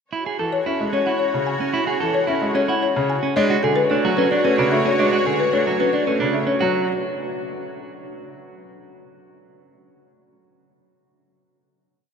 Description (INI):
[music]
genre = classical, minimalist pattern music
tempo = 111 BPM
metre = 3/4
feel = straight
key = A major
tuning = A4 = 440 Hz
[part]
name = bright clarinet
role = second line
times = 0.1-6.4 s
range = F#4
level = -28 LUFS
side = right 2 dB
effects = none
[part]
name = rich symphonic string section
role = sustained chords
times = 0.1-6.4 s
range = F#4 to C#5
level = -29 LUFS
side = left 2 dB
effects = none
[part]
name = clean electric guitar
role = arpeggios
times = 0.1-6.9 s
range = C#4 to A4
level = -24 LUFS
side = right 4 dB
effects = none
[part]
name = folk marimba with medium hard mallets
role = melody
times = 0.4-6.9 s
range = A4 to G#5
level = -22 LUFS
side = left 5 dB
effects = none
[part]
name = bright grand piano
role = accompaniment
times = 0.4-6.9 s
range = C#3 to C#4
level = -25 LUFS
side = right 1 dB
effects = none
[sound]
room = wet cathedral reverb, RT60 5.6 s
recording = in a vast, echoing space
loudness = -18 LUFS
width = side -6 dB against mid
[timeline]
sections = 0.1-6.6 A section; 6.6-8.2 final chord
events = none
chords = 0.1 A6 (rootless); 3.4 Dmaj7#11; 6.6 F#5